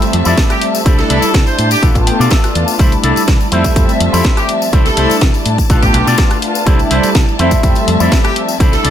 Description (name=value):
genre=filtered disco house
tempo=124 BPM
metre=4/4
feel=straight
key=C major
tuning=A4 = 441 Hz
part: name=mellow synth brass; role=accompaniment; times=0.0-8.9 s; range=G3 to E5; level=-17 LUFS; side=equal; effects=chorus, phaser, sidechain pumping
part: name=warm studio string section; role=sustained chords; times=0.0-8.9 s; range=F3 to A5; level=-22 LUFS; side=left 1 dB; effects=sidechain pumping
part: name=electric guitar with an envelope filter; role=riff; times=0.0-8.9 s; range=D4 to G5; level=-19 LUFS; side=left 1 dB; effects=sidechain pumping
part: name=house drum kit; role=drums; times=0.0-8.9 s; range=hi-hat, rim click, snare drum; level=-20 LUFS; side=left 1 dB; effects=none
part: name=tambourine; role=percussion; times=0.0-8.8 s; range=none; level=-26 LUFS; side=left 8 dB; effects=sidechain pumping on perc
part: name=fingered electric bass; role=bass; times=0.1-8.9 s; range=A1 to C3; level=-16 LUFS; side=equal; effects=tube saturation, sidechain pumping
part: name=electronic kick drum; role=drums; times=0.4-8.7 s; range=none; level=-12 LUFS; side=equal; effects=none
part: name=bright horn section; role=melody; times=0.5-8.9 s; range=G4 to C5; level=-19 LUFS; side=equal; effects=sidechain pumping
room=light reverb, digital ambience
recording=none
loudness=-10 LUFS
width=side -10 dB against mid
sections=0.0-8.9 A section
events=clean electric guitar fill 1.8-2.8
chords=0.0 Fmaj7; 0.9 C69; 1.8 G9; 2.8 C69; 3.5 Fmaj7; 4.7 C69; 5.7 G9; 6.7 C69; 7.4 Fmaj7